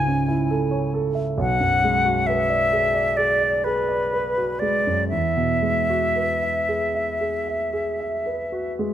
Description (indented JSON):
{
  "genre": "classical, impressionist duo for flute and grand piano",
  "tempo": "56-70 BPM",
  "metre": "4/4",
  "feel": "rubato",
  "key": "unclear",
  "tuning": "A4 = 439 Hz",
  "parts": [
    { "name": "silver concert flute", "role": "melody", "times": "0.0-8.7 s", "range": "B4 to G#5", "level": "-22 LUFS", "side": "left 1 dB", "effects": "none" },
    { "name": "dark concert grand piano", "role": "accompaniment", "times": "0.0-8.9 s", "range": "B1 to E5", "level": "-23 LUFS", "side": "right 2 dB", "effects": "none" }
  ],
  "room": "light reverb",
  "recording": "close, detailed microphones",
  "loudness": "-20 LUFS",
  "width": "side -11 dB against mid",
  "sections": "0.0-8.9 A section",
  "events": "none",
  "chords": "0.0 Amaj7/C#; 1.4 Bm6; 5.1 Eadd9"
}